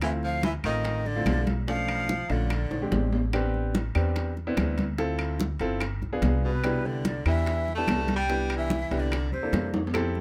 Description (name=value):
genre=Afro-Cuban jazz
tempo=145 BPM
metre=4/4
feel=straight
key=C major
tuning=A4 = 441 Hz
part: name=breathy mellow jazz flute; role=melody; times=0.0-3.1, 6.5-9.7 s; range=B4 to A5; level=-34 LUFS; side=equal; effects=none
part: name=clear baritone saxophone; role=second line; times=0.0-3.1, 6.4-9.7 s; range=B2 to A3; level=-36 LUFS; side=equal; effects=none
part: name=warm baby grand piano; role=accompaniment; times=0.0-10.2 s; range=Ab3 to A4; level=-34 LUFS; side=equal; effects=none
part: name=upright bass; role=bass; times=0.0-10.2 s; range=G1 to F2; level=-31 LUFS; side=equal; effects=none
part: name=bongos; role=percussion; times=0.0-10.2 s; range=none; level=-40 LUFS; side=equal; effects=none
part: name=claves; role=percussion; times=0.0-10.1 s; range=none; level=-38 LUFS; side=equal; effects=none
part: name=congas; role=percussion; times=0.0-10.2 s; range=none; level=-35 LUFS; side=equal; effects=none
part: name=timbales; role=percussion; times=0.0-10.1 s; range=none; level=-38 LUFS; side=equal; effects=none
room=little or no reverb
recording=close, detailed microphones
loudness=-27 LUFS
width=mono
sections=0.0-9.9 A section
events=drum fill 2.7-3.3, 9.7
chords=0.0 Dm7; 1.7 Bm7b5; 2.5 Bb13; 3.3 Am11; 5.0 Dm9; 5.8 G7b9; 6.6 Cmaj9; 9.1 C13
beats=| 0.02 0.43 0.85 1.26 | 1.68 2.09 2.50 2.92 | 3.33 3.75 4.16 4.57 | 4.99 5.40 5.81 6.23 | 6.64 7.05 7.46 7.88 | 8.29 8.71 9.12 9.53 | 9.94